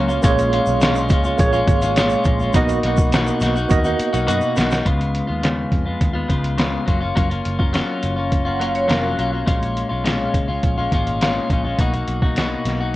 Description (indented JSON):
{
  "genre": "indie pop, bedroom pop",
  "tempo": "104 BPM",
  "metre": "4/4",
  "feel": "straight",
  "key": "unclear",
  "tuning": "A4 = 440 Hz",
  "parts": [
    { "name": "clean electric guitar", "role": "accompaniment", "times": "0.0-13.0 s", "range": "A#2 to F#4", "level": "-21 LUFS", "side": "left 2 dB", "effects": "lush chorus, warbly pitch drift" },
    { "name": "tine electric piano", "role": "accompaniment", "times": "0.0-4.9 s", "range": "A#3 to D#5", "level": "-21 LUFS", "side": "right 4 dB", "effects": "overdrive, medium stereo tremolo, cassette tape" },
    { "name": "vintage muted picked electric bass", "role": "bass", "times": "0.0-13.0 s", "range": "E#1 to F#2", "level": "-24 LUFS", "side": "equal", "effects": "none" },
    { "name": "tube shaker", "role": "percussion", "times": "0.1-4.8 s", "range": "none", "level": "-41 LUFS", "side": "right 5 dB", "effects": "none" },
    { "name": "trip hop sampler-style drum kit", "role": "drums", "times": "0.2-12.8 s", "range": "hi-hat, kick drum, snare drum", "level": "-20 LUFS", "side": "equal", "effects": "vintage 12-bit sampler grit" },
    { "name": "vibraphone with medium hard mallets", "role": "second line", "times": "8.5-9.5 s", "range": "F#4 to F#5", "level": "-25 LUFS", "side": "right 2 dB", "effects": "analog chorus, tape echo" }
  ],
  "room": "moderate spring reverb, RT60 1.2 s, digital ambience",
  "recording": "worn, warbling old tape, cassette tape, warbly pitch drift",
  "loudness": "-16 LUFS",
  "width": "side -16 dB against mid",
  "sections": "0.0-4.9 A section; 4.9-13.0 B section",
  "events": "drum fill 3.7-4.9",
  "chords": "0.2 A#m7; 2.5 Bmaj7; 4.9 C#7; 6.9 F#maj7; 9.5 A#m7; 11.8 Bmaj7",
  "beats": "| 0.23 0.81 1.39 1.96 | 2.54 3.12 3.70 4.27 | 4.85 5.43 6.01 6.58 | 7.16 7.74 8.32 8.90 | 9.48 10.05 10.63 11.21 | 11.79 12.37 12.95"
}